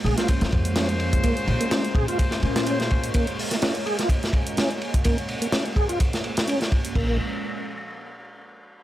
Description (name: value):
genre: breakbeat, breaks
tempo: 126 BPM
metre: 4/4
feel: swing 55% on 16ths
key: Bb minor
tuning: A4 = 440 Hz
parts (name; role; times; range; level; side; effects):
- phased analog pad; sustained chords; 0.0-7.2 s; Bb2 to Db4; -31 LUFS; right 1 dB; phaser, chorus, sidechain pumping
- mellow tonewheel organ; riff; 0.0-7.2 s; Bb3 to Ab4; -28 LUFS; equal; chorus vibrato, fast rotary speaker, tube saturation, vintage 12-bit sampler grit, low-pass filter, digital delay
- upright bass; bass; 0.0-3.1, 7.0-7.2 s; Bb1 to Bb2; -26 LUFS; equal; tube saturation
- crunchy breakbeat drum kit; drums; 0.1-7.1 s; crash cymbal, hi-hat, kick drum, ride cymbal, snare drum; -24 LUFS; equal; none
- mellow horn section; stabs; 0.2-3.4 s; Db4 to C5; -30 LUFS; left 2 dB; digital delay
- electronic hi-hat; drums; 0.2-6.9 s; none; -35 LUFS; right 2 dB; overdrive
room: light reverb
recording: none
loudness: -21 LUFS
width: side -14 dB against mid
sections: 0.0-7.0 A section; 7.0-8.8 B section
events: filter sweep on tonewheel organ 0.0-7.0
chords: 0.0 Bbm7; 7.0 N.C.